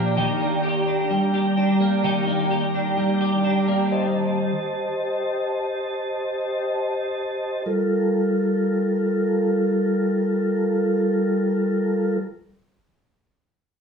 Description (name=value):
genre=dream pop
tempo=64 BPM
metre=4/4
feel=straight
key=G minor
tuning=A4 = 440 Hz
part: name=mellow tonewheel organ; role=sustained chords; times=0.0-12.2 s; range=G3 to Bb5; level=-22 LUFS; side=equal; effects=slow rotary speaker
part: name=twelve-string electric guitar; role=arpeggios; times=0.0-4.5 s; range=Bb2 to G4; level=-21 LUFS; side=equal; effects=ensemble chorus, tape echo
room=wet studio reverb, RT60 0.6 s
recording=small room ambience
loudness=-20 LUFS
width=side -6 dB against mid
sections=0.0-7.7 A section; 7.7-11.4 B section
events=none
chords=0.2 Ebmaj7; 3.9 Am7b5; 7.7 Gm9